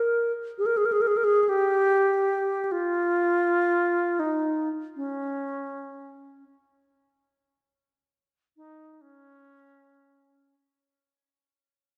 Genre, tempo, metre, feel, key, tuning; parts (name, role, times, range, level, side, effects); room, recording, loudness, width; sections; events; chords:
world meditative, free-time meditation music; free time; Db lydian; A4 = 440 Hz
bright alto flute; solo; 0.0-10.5 s; Db4 to Bb4; -25 LUFS; equal
wet scoring stage reverb, RT60 1.6 s, studio reverb; dark, warm production; -25 LUFS; mono
0.0-10.7 A section
fade-out 0.0-10.7